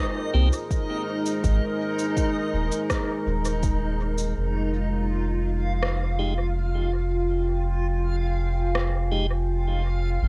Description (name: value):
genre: ambient dub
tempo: 82 BPM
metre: 4/4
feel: straight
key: F minor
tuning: A4 = 440 Hz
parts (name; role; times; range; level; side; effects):
- deep dark ambient pad; sustained chords; 0.0-10.3 s; Ab3 to Ab5; -32 LUFS; equal; chorus, built-in reverb
- backwards swelling texture; texture; 0.0-10.3 s; Eb4 to F5; -34 LUFS; equal; built-in reverb
- tonewheel organ; stabs; 0.3-0.5, 6.2-9.3 s; Ab3 to G4; -34 LUFS; equal; overdrive, stopped rotary speaker, low-pass filter, dub echo
- soft dub sub bass; bass; 0.3-10.3 s; Eb1 to C2; -27 LUFS; equal; tube saturation
- electronic shaker and rim click; drums; 0.5-8.9 s; none; -35 LUFS; equal; dub echo
- electronic kick drum; drums; 0.7-3.8 s; none; -29 LUFS; equal; none
room: light reverb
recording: home recording on cassette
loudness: -25 LUFS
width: mono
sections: 0.0-4.4 A section; 4.4-10.3 B section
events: none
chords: 0.0 Abmaj7; 4.4 Fm7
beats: 0.70 | 1.44 2.17 2.90 3.63 | 4.36 5.09 5.83 6.56 | 7.29 8.02 8.75 9.48 | 10.22